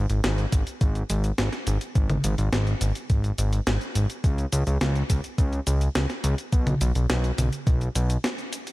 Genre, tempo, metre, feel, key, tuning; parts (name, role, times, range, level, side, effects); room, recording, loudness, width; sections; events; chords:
synthwave; 105 BPM; 4/4; straight; G# minor; A4 = 437 Hz
fat analog bass; bass; 0.0-8.2 s; G#1 to C#2; -23 LUFS; equal; sidechain pumping
clean 12-bit digital drum machine; drums; 0.1-8.7 s; hi-hat, shaker, snare drum, toms; -29 LUFS; equal
electronic kick drum; drums; 0.5-7.8 s; -22 LUFS; equal
little or no reverb; dark, warm production; -22 LUFS; side -19 dB against mid
0.0-8.7 A section
break 8.2-8.7